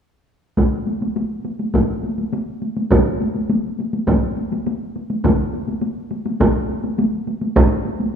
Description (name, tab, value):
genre	japanese traditional, taiko drum ensemble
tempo	103 BPM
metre	4/4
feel	straight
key	none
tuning	none
part	taiko ensemble	percussion	0.6-8.1 s	none	-21 LUFS	left 1 dB	none
part	taiko ensemble	percussion	0.6-7.7 s	none	-18 LUFS	right 1 dB	none
room	wet recital hall reverb, RT60 1.6 s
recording	minimal, uncompressed stereo recording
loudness	-18 LUFS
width	side -7 dB against mid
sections	0.6-8.2 A section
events	none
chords	none